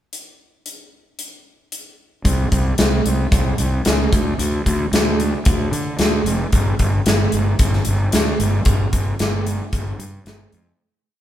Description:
classic rock; 113 BPM; 4/4; straight; A4 = 440 Hz
big rock drum kit; drums; 0.1-10.6 s; hi-hat, kick drum, snare drum; -19 LUFS; equal
fuzz fingered electric bass; bass; 2.2-10.7 s; F1 to D3; -19 LUFS; equal; overdrive
moderate large studio reverb, RT60 0.9 s; band playing live in one room; -16 LUFS; side -12 dB against mid
0.1-2.3 pickup bar; 2.3-10.8 verse
fade-out 8.7-10.8
| 0.12 0.66 1.20 1.73 | 2.27 2.80 3.33 3.87 | 4.40 4.93 5.46 6.00 | 6.53 7.06 7.59 8.12 | 8.65 9.19 9.72 10.25

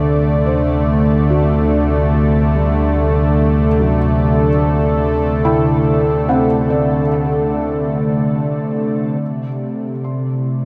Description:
ambient; 72 BPM; 4/4; straight; A4 = 440 Hz
warm analog pad; sustained chords; 0.0-10.7 s; C3 to D5; -18 LUFS; equal; chorus
felt-muted upright piano; arpeggios; 0.0-10.7 s; F#3 to C6; -26 LUFS; equal; analog delay
round analog bass; bass; 0.0-9.2 s; D2; -23 LUFS; equal
organ-like drone; drone; 0.0-10.7 s; C3 to A3; -25 LUFS; equal; ensemble chorus, built-in reverb
wet huge ambient reverb, RT60 7.6 s; dreamy mix soaked in reverb, cassette tape; -16 LUFS; mono
0.0-9.2 A section; 9.2-10.7 B section
0.0 Dsus4; 9.2 C69
0.04 0.88 1.71 | 2.54 3.38 4.21 5.04 | 5.88 6.71 7.54 8.38 | 9.21 10.04

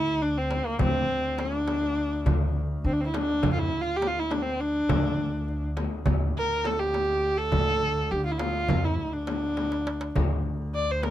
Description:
Turkish makam ensemble; 205 BPM (eighths); 9/8; straight; D makam ussak; A4 = 440 Hz
warm kamancheh; melody; 0.0-11.1 s; Bb3 to D5; -27 LUFS; equal
upright bass; bass; 0.0-11.1 s; D2 to D3; -28 LUFS; equal
clear double bass; drone; 0.0-11.1 s; D2; -35 LUFS; equal
darbuka; percussion; 0.2-11.1 s; -31 LUFS; right 4 dB
frame drum; percussion; 0.5-11.1 s; -33 LUFS; left 4 dB
light reverb; close, detailed microphones; -24 LUFS; side -12 dB against mid
0.0-11.1 A section
drum fill 9.6-10.2
0.21 0.51 0.80 1.09 1.39 1.68 1.97 | 2.26 2.56 2.85 3.14 3.43 3.73 4.02 4.31 4.60 | 4.90 5.19 5.48 5.77 6.07 6.36 6.65 6.94 7.24 | 7.53 7.82 8.11 8.41 8.70 8.99 9.28 9.58 9.87 | 10.16 10.45 10.74 11.04

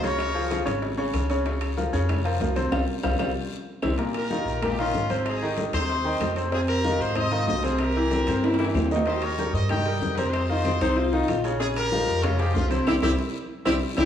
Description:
latin, salsa; 189 BPM; 4/4; straight; F minor; A4 = 441 Hz
brilliant horn section; melody; 0.0-0.7, 4.2-14.1 s; C4 to G5; -28 LUFS; left 1 dB
bright grand piano; accompaniment; 0.0-14.1 s; Bb2 to G5; -26 LUFS; equal
upright bass; bass; 0.0-14.1 s; Ab1 to Ab2; -28 LUFS; equal
bongos; percussion; 0.0-14.0 s; -37 LUFS; left 3 dB
congas; percussion; 0.0-14.1 s; -35 LUFS; left 3 dB
guiro; percussion; 0.0-14.0 s; -45 LUFS; left 8 dB
timbales; percussion; 0.0-14.1 s; -33 LUFS; right 4 dB
claves; percussion; 0.2-14.0 s; -42 LUFS; left 2 dB
warm baritone saxophone; second line; 8.1-14.1 s; C4 to F4; -27 LUFS; left 3 dB
wet large studio reverb, RT60 1.4 s; -22 LUFS; side -9 dB against mid
0.0-4.0 A section; 4.0-14.1 B section
band accent 2.7-4.0, 12.9-14.1; drum fill 3.5-4.0, 8.4-9.1
0.2 Db6; 1.5 Bbmadd9/Db; 2.7 Csus4; 3.4 C; 4.0 Ebadd9; 5.3 Abmaj7; 6.5 Fm7; 7.8 C7; 9.1 Eb; 10.3 Fm7; 11.6 Bbm7; 12.9 C
| 0.19 0.51 0.82 1.14 | 1.46 1.77 2.09 2.41 | 2.72 3.04 3.36 3.67 | 3.99 4.31 4.62 4.94 | 5.26 5.58 5.89 6.21 | 6.53 6.85 7.17 7.48 | 7.80 8.12 8.44 8.75 | 9.07 9.39 9.70 10.02 | 10.34 10.65 10.97 11.29 | 11.60 11.92 12.24 12.55 | 12.87 13.18 13.50 13.81

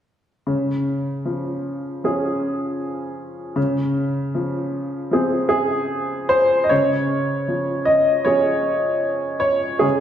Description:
neoclassical minimalist piano; 77 BPM; 4/4; rubato; Db major; A4 = 440 Hz
clear upright piano; solo; 0.5-10.0 s; Db3 to Eb5; -18 LUFS; equal
wet recital hall reverb, RT60 1.8 s; recorded in a church or concert hall; -18 LUFS; side -10 dB against mid
0.5-6.7 A section; 6.7-10.0 B section
0.5 Db; 3.6 Fm/Db; 6.7 Db
| 0.47 1.27 2.04 2.81 | 3.57 4.34 5.11 5.90 | 6.71 7.50 8.27 9.06 | 9.83

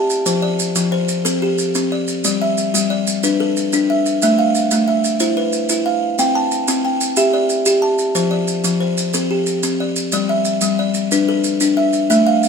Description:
southern african traditional, mbira-style interlocking cycle; 122 BPM (dotted quarters); 12/8; straight; G mixolydian; A4 = 441 Hz
buzzing kalimba; arpeggios; 0.0-12.5 s; F3 to A5; -15 LUFS; left 1 dB
maracas; percussion; 0.1-12.5 s; -23 LUFS; right 3 dB
wet stone room reverb, RT60 1.3 s; band playing live in one room; -15 LUFS; side -6 dB against mid
0.0-10.1 A section; 10.1-12.5 B section
0.3 F; 2.2 G; 4.2 Am; 6.2 C; 8.2 F; 10.1 G
| 0.27 0.77 1.26 1.75 | 2.25 2.74 3.24 3.73 | 4.22 4.71 5.21 5.70 | 6.19 6.68 7.17 7.67 | 8.16 8.65 9.14 9.63 | 10.13 10.62 11.12 11.61 | 12.10

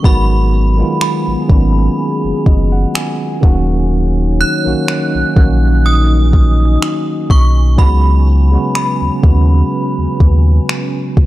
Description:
contemporary R&B; 62 BPM; 4/4; swing 54% on 16ths; Eb minor; A4 = 440 Hz
synth chime; melody; 0.0-10.2 s; Cb6 to Gb6; -21 LUFS; right 2 dB; ensemble chorus, phaser, digital delay
tine electric piano; accompaniment; 0.0-11.3 s; Db3 to Ab5; -17 LUFS; right 1 dB; fast stereo tremolo
deep dark ambient pad; sustained chords; 0.3-11.3 s; Cb4 to Ab5; -23 LUFS; left 2 dB; chorus, built-in reverb
sub bass with octave; bass; 0.0-11.3 s; Eb1 to Eb2; -12 LUFS; equal
smooth R&B drum kit; drums; 0.0-11.3 s; finger snaps, kick drum; -11 LUFS; equal
little or no reverb; dark, warm production; -10 LUFS; side -16 dB against mid
0.0-11.3 A section
tine electric piano fill 2.0-3.9
0.0 Abm7; 3.4 Ebm7; 7.8 Db7sus4
| 0.04 1.01 1.98 2.95 | 3.91 4.88 5.85 6.82 | 7.78 8.75 9.72 10.69

